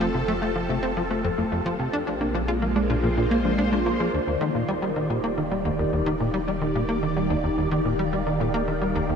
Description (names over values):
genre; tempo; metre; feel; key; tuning
ambient, sequencer-driven space music; 109 BPM; 4/4; straight; unclear; A4 = 440 Hz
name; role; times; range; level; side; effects
phased string machine; sustained chords; 0.0-9.2 s; Eb3 to F5; -26 LUFS; right 1 dB; ensemble chorus, phaser
thumb-piano-like synth pluck; arpeggios; 0.0-4.1 s; F3 to C5; -30 LUFS; moving between left 6 dB and right 1 dB; chorus, auto-pan, ping-pong delay
tight sequencer bass; riff; 0.0-9.1 s; Eb2 to F4; -26 LUFS; equal; lush chorus, vintage 12-bit sampler grit, ping-pong delay
warm sub bass; bass; 0.0-9.2 s; Eb1 to Bb1; -33 LUFS; equal; none
bubbling stepped-filter texture; texture; 0.0-4.1 s; G4 to G5; -42 LUFS; left 1 dB; none
room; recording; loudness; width
moderate huge ambient reverb, RT60 8.5 s; dreamy mix soaked in reverb; -22 LUFS; side -6 dB against mid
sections
0.0-4.1 A section; 4.1-9.2 B section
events
none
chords
0.0 F; 1.9 Bb7; 4.1 Ebmaj7